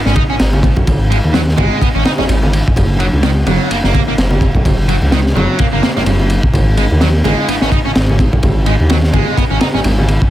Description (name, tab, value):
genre	breakbeat, breaks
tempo	127 BPM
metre	4/4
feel	swing 57% on 16ths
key	unclear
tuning	A4 = 440 Hz
part	dark detuned saw bass	bass	0.0-10.2 s	F#1 to D#2	-14 LUFS	equal	none
part	distorted electric guitar	riff	0.1-9.8 s	D#3 to D#4	-19 LUFS	right 1 dB	distortion, tube saturation, dub echo
part	crunchy breakbeat drum kit	drums	0.1-10.3 s	kick drum, ride cymbal, snare drum	-14 LUFS	equal	dub echo
part	congas	percussion	0.2-10.1 s	none	-21 LUFS	right 1 dB	none
room	little or no reverb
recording	echo-heavy mix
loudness	-10 LUFS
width	side -13 dB against mid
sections	0.0-10.3 A section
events	none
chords	0.0 G#5; 2.8 F#; 6.5 G#5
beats	0.40 | 0.87 1.34 1.82 2.29 | 2.76 3.23 3.71 4.18 | 4.65 5.12 5.60 6.07 | 6.54 7.01 7.49 7.96 | 8.43 8.90 9.38 9.85